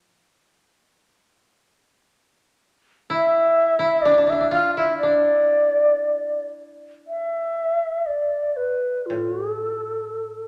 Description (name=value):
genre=japanese traditional, Japanese chamber music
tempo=58-63 BPM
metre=2/4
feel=rubato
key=D kumoi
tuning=A4 = 440 Hz
part: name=koto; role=accompaniment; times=0.0-0.1, 9.1-10.5 s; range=A2 to D5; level=-37 LUFS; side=equal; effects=none
part: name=mellow long shakuhachi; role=melody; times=3.1-10.5 s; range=A4 to F5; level=-22 LUFS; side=equal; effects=none
part: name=koto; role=second line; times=3.1-7.5 s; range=D4 to F4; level=-30 LUFS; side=equal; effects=none
room=wet recital hall reverb, RT60 1.8 s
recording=none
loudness=-21 LUFS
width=mono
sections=0.0-7.1 A section; 7.1-10.5 B section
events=none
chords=none